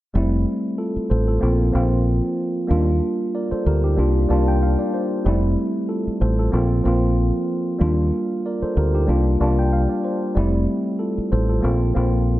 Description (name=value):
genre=hip hop, boom-bap hip-hop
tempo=94 BPM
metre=4/4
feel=swing 55% on 16ths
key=F major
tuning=A4 = 439 Hz
part: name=tine electric piano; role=accompaniment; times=0.1-12.4 s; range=F3 to A5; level=-21 LUFS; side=equal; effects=high-pass filter, low-pass filter
part: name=deep dub fingered electric bass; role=bass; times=0.2-12.4 s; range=F1 to Eb2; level=-19 LUFS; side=equal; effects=none
room=moderate lush hall reverb, RT60 1.7 s, digital ambience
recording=dreamy mix soaked in reverb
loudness=-18 LUFS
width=side -15 dB against mid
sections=0.2-12.4 A section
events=tine electric piano fill 4.0-5.3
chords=0.2 Fmaj7; 1.4 Bbsus2; 2.7 Ebmaj7; 4.0 C7sus4; 5.3 Fmaj7; 6.5 Bbsus2; 7.8 Ebmaj7; 9.1 C7sus4; 10.4 Fmaj7; 11.6 Bbsus2